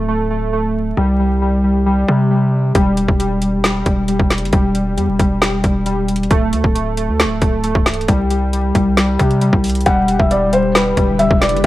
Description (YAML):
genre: hip hop, trap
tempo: 135 BPM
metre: 4/4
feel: half-time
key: E minor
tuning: A4 = 440 Hz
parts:
  - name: warbly lo-fi synth keys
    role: accompaniment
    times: 0.0-11.7 s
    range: G3 to A3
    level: -17 LUFS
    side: left 1 dB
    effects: chorus, low-pass filter
  - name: distorted 808-style bass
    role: bass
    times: 0.0-11.7 s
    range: C1 to C3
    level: -19 LUFS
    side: equal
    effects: distortion
  - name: trap drum kit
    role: drums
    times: 2.7-11.7 s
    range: hi-hat, kick drum, snare drum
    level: -16 LUFS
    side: equal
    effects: none
  - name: felt-muted upright piano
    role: melody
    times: 9.9-11.6 s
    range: B4 to F#5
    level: -15 LUFS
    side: equal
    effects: low-pass filter, tape echo
  - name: ethereal airy pad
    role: sustained chords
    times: 10.4-11.7 s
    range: D3 to B4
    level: -27 LUFS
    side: equal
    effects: ensemble chorus, built-in reverb
room: little or no reverb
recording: dry, gritty hardware recording, vinyl crackle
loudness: -13 LUFS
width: side -16 dB against mid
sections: 0.0-9.9 A section; 9.9-11.7 B section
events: none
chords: 0.0 D5; 1.0 C5; 2.8 Em; 6.3 D5; 8.1 C5; 9.9 Em7